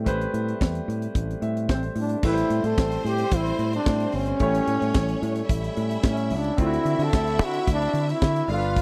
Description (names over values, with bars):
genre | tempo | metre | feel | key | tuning
disco | 110 BPM | 4/4 | straight | A minor | A4 = 440 Hz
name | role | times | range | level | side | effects
clear concert grand piano | accompaniment | 0.0-8.8 s | D3 to E5 | -34 LUFS | equal | none
tonewheel organ | sustained chords | 0.0-8.8 s | D3 to B4 | -38 LUFS | equal | none
fingered electric bass | bass | 0.0-8.8 s | G1 to D3 | -29 LUFS | equal | none
tight funk drum kit | drums | 0.1-8.8 s | crash cymbal, hi-hat, kick drum, snare drum | -25 LUFS | equal | none
mellow trombone | melody | 1.7-8.8 s | C4 to A4 | -28 LUFS | equal | none
clear studio string section | second line | 2.2-8.8 s | C4 to F5 | -36 LUFS | equal | none
room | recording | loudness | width
studio reverb | dry, close 1970s-style studio recording | -24 LUFS | mono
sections
0.0-2.2 A section; 2.2-8.8 B section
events
grand piano fill 1.1-2.2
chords
0.0 Am9; 2.2 Am7; 4.4 A7; 6.6 D9